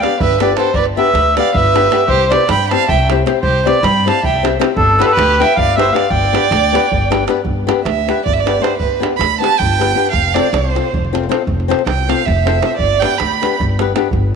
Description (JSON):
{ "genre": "balkan folk, Balkan wedding band", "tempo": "313 BPM (eighths)", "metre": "7/8", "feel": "straight", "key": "G mixolydian", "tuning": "A4 = 440 Hz", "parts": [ { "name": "accordion", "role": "melody", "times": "0.0-7.2 s", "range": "A4 to B5", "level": "-15 LUFS", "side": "left 1 dB", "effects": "none" }, { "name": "rich violin", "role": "second line", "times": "0.0-13.6 s", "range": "D4 to B5", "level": "-17 LUFS", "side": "right 10 dB", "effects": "none" }, { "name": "flamenco guitar", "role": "accompaniment", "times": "0.0-14.1 s", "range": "B3 to C5", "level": "-19 LUFS", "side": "left 11 dB", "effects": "none" }, { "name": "upright bass", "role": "bass", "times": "0.0-14.4 s", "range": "F1 to G2", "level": "-19 LUFS", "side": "equal", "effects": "none" }, { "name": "davul", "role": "percussion", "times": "0.0-14.2 s", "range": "none", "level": "-22 LUFS", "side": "right 5 dB", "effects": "none" } ], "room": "moderate plate reverb, RT60 2.9 s", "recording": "1960s-style stereo with parts hard left and right", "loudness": "-12 LUFS", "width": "side -6 dB against mid", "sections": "0.0-7.5 A section; 7.5-14.4 B section", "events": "violin solo 7.5-14.4", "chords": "0.0 G; 2.1 C; 4.8 G; 10.1 F; 12.8 G" }